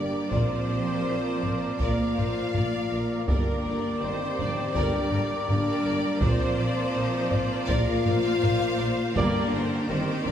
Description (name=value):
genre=cinematic, epic orchestral film score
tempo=82 BPM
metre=4/4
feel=straight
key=unclear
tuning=A4 = 439 Hz
part: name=bright symphonic violin section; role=melody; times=0.0-10.3 s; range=Bb4 to F5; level=-35 LUFS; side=left 3 dB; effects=none
part: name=warm symphonic violin section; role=second line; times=0.0-10.3 s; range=Bb4 to D5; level=-37 LUFS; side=left 2 dB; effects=none
part: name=clear symphonic viola section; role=accompaniment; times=0.0-10.3 s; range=Eb4 to D5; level=-37 LUFS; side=right 1 dB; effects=none
part: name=bright trombone section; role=sustained chords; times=0.0-9.4 s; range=F3 to Bb3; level=-37 LUFS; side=right 3 dB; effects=none
part: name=dark French horn section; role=sustained chords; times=0.0-10.3 s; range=Bb3 to F4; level=-30 LUFS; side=left 2 dB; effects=none
part: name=rich symphonic string section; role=sustained chords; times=0.0-10.3 s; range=G3 to D5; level=-36 LUFS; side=right 1 dB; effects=none
part: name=warm trumpet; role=stabs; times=0.0-9.4 s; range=D5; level=-34 LUFS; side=left 1 dB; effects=none
part: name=dark symphonic cello section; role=bass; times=0.0-10.3 s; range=D3 to Bb3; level=-33 LUFS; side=right 2 dB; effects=none
part: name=dark tuba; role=bass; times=0.0-10.3 s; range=G1 to Bb1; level=-33 LUFS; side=right 2 dB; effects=none
part: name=rich symphonic double bass section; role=bass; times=0.0-10.3 s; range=G1 to Bb1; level=-34 LUFS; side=right 1 dB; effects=none
part: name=taiko ensemble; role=drums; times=0.3-10.3 s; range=none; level=-29 LUFS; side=equal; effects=none
part: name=timpani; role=percussion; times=9.2-10.2 s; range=G2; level=-36 LUFS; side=equal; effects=none
room=wet recital hall reverb, RT60 1.5 s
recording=recorded in a church or concert hall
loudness=-23 LUFS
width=side -9 dB against mid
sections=0.0-10.3 A section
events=none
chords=0.3 Bbadd9; 3.3 Gm; 6.2 Bbadd9; 9.2 Gm